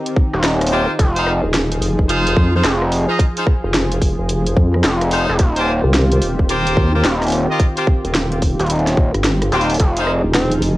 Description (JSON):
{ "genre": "glitch hop", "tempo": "109 BPM", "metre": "4/4", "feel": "swing 63% on 16ths", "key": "F minor", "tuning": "A4 = 438 Hz", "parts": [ { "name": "warm analog pad", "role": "sustained chords", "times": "0.0-10.8 s", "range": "Eb3 to Ab4", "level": "-23 LUFS", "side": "equal", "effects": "chorus, sidechain pumping" }, { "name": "drum and bass drum kit", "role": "drums", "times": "0.1-10.8 s", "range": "hi-hat, rim click, snare drum", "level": "-21 LUFS", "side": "equal", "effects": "small room ambience, cassette tape" }, { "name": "electronic kick drum", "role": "drums", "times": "0.2-9.9 s", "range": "none", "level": "-15 LUFS", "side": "equal", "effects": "small room ambience, cassette tape" }, { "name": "gritty driven synth bass", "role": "bass", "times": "0.3-10.2 s", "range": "Eb1 to F1", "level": "-17 LUFS", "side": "equal", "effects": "distortion, tube saturation" }, { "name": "brilliant horn section", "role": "stabs", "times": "0.7-10.1 s", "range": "Eb4 to Eb5", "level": "-22 LUFS", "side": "left 1 dB", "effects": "sidechain pumping, analog delay" }, { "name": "vowel-sweep wobble bass", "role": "bass", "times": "1.4-10.8 s", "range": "Eb1 to F2", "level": "-17 LUFS", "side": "equal", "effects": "chorus, tube saturation" }, { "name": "warm tenor saxophone", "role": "melody", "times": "10.3-10.5 s", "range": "C4", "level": "-22 LUFS", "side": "equal", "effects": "cassette tape" } ], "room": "light reverb, digital ambience", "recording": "home recording on cassette", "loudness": "-14 LUFS", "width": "side -17 dB against mid", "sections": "0.0-10.8 A section", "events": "none", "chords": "0.0 Eb69; 1.0 Fm7; 5.4 Eb69; 9.8 Fm7" }